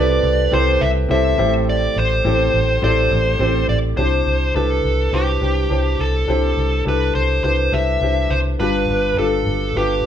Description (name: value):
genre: piano-driven pop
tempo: 104 BPM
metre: 4/4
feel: swing 56% on 16ths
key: C major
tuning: A4 = 441 Hz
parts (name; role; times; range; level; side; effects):
- dark smooth lead guitar; melody; 0.0-10.1 s; G4 to E5; -20 LUFS; left 1 dB; overdrive
- warm concert grand piano; accompaniment; 0.0-10.1 s; G2 to D5; -20 LUFS; left 1 dB; none
- vintage muted fingered electric bass; bass; 0.0-10.1 s; G1 to C2; -20 LUFS; equal; none
room: moderate large studio reverb, RT60 0.8 s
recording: band playing live in one room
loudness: -15 LUFS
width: side -9 dB against mid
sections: 0.0-4.0 A section; 4.0-10.1 B section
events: none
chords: 0.0 C6; 1.4 Am7; 4.0 Cadd9; 8.6 G7